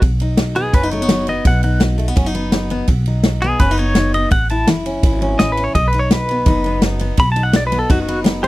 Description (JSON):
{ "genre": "honky-tonk and classic country", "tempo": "168 BPM", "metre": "4/4", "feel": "straight", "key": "B mixolydian", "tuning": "A4 = 439 Hz", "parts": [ { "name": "picked steel-string acoustic guitar", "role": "accompaniment", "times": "0.0-8.5 s", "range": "F#2 to E4", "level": "-21 LUFS", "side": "left 2 dB", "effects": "none" }, { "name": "upright bass", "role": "bass", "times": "0.0-8.5 s", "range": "F#1 to B1", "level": "-19 LUFS", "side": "equal", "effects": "none" }, { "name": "natural country drum kit", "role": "drums", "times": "0.0-8.5 s", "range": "kick drum, ride cymbal, snare drum", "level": "-16 LUFS", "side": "equal", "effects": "none" }, { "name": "pedal steel guitar", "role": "melody", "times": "0.6-8.5 s", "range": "F#4 to B5", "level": "-19 LUFS", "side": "equal", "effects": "none" } ], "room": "little or no reverb", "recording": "dry, close 1970s-style studio recording", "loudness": "-13 LUFS", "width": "side -18 dB against mid", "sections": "0.0-8.5 A section", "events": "pedal steel guitar solo 0.0-8.5", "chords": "0.0 B; 4.3 A; 5.8 B" }